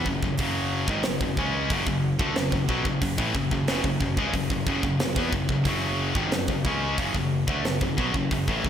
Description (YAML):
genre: heavy metal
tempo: 91 BPM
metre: 4/4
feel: straight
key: F# minor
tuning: A4 = 440 Hz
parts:
  - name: high-gain distorted guitar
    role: riff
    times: 0.0-8.7 s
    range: F#2 to C#4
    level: -27 LUFS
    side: left 5 dB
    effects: distortion
  - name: high-gain distorted guitar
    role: riff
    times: 0.0-8.7 s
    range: F#2 to C#4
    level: -30 LUFS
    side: right 9 dB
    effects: distortion
  - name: overdriven picked electric bass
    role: bass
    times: 0.0-8.7 s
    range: F#1 to E2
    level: -32 LUFS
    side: equal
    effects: none
  - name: tight metal drum kit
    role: drums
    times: 0.1-8.7 s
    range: hi-hat, kick drum, snare drum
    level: -28 LUFS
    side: right 1 dB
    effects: gated reverb
room: moderate lush hall reverb, RT60 1.9 s, studio reverb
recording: bright 1980s-style digital production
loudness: -23 LUFS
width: side -9 dB against mid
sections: 0.0-8.7 A section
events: none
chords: 0.0 F#m